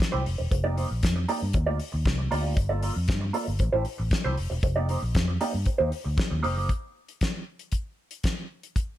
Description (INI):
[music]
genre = disco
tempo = 116 BPM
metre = 4/4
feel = straight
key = unclear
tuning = A4 = 441 Hz
[part]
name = mellow electric guitar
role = accompaniment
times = 0.0-6.7 s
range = A3 to D5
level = -29 LUFS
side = right 3 dB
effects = wah
[part]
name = damped 70s drum kit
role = drums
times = 0.0-8.9 s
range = hi-hat, kick drum, snare drum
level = -28 LUFS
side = left 1 dB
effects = gated reverb
[part]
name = fingered electric bass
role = bass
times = 0.1-6.7 s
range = E1 to G2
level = -27 LUFS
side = equal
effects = none
[sound]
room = small room reverb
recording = none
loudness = -24 LUFS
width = side -14 dB against mid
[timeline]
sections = 0.0-6.7 A section; 6.7-9.0 B section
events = none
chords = 0.3 F9sus4; 1.5 Ebmaj9; 2.6 Gm9; 3.6 Am7; 4.4 F9sus4; 6.7 N.C.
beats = 0.00 | 0.51 1.03 1.54 2.06 | 2.57 3.08 3.60 4.11 | 4.63 5.14 5.66 6.18 | 6.69 7.21 7.73 8.24 | 8.76